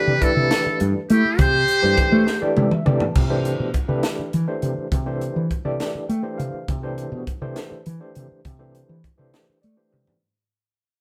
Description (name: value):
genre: electric jazz fusion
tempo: 68 BPM (dotted quarters)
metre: 6/8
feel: straight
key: C major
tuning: A4 = 440 Hz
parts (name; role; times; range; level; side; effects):
- trumpet with metal mute; melody; 0.0-2.6 s; G4 to C5; -23 LUFS; equal; none
- breathy mellow silver concert flute; second line; 0.0-2.6 s; E4 to G4; -27 LUFS; equal; none
- overdriven tine electric piano; accompaniment; 0.0-10.2 s; E3 to A5; -28 LUFS; equal; fast tremolo
- fretless electric bass; bass; 0.1-10.1 s; G2 to A3; -25 LUFS; equal; none
- crisp fusion drum kit; drums; 0.2-10.2 s; crash cymbal, hi-hat, kick drum, snare drum, toms; -26 LUFS; equal; none
room: moderate studio reverb, RT60 0.8 s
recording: band playing live in one room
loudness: -21 LUFS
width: mono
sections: 0.0-3.2 A section; 3.2-10.2 B section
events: drum fill 2.3-3.2, 9.9; tine electric piano fill 2.3-3.2, 5.8-6.7, 9.3-10.2; fade-out 3.2-10.2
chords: 0.0 Cmaj9; 1.4 Cadd9; 3.2 Cmaj9; 4.9 C69; 6.7 Cadd9; 8.5 C69